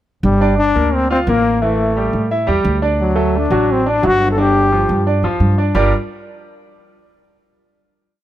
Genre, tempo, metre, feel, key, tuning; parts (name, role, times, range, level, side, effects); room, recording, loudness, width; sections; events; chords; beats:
latin; 174 BPM; 4/4; straight; G minor; A4 = 441 Hz
bright trombone; melody; 0.2-5.1 s; F#3 to A4; -16 LUFS; left 2 dB
upright bass; bass; 0.2-5.9 s; G1 to A2; -17 LUFS; equal
clear concert grand piano; accompaniment; 0.4-5.9 s; D3 to F5; -18 LUFS; right 1 dB
light reverb; -13 LUFS; side -12 dB against mid
0.2-5.8 A section; 5.8-7.1 final chord
0.2 Gm9; 1.6 A5; 3.0 D; 4.4 G5; 5.8 Gm7
| 0.23 0.58 0.92 1.27 | 1.61 1.96 2.30 2.65 | 2.99 3.34 3.68 4.03 | 4.37 4.72 5.06 5.41 | 5.75